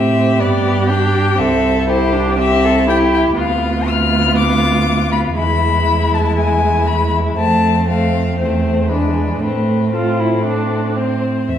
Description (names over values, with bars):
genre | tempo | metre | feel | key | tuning
quick classical-period movement for string quartet | 120 BPM | 4/4 | straight | A minor | A4 = 440 Hz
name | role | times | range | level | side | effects
rich violin | melody | 0.0-11.6 s | A4 to F6 | -19 LUFS | left 6 dB | none
warm violin | second line | 0.0-11.3 s | C4 to A4 | -21 LUFS | left 2 dB | none
rich viola | accompaniment | 0.0-11.5 s | G#3 to F4 | -19 LUFS | right 1 dB | none
rich cello | bass | 0.0-11.6 s | C2 to A2 | -18 LUFS | right 2 dB | none
room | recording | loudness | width
wet recital hall reverb, RT60 1.4 s | heard from further back in the room | -13 LUFS | side -9 dB against mid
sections
0.0-11.5 A section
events
none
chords
0.4 G; 1.4 C; 3.4 Bdim/D; 5.4 E; 7.4 F; 8.4 Am/E; 8.9 E7; 9.4 Am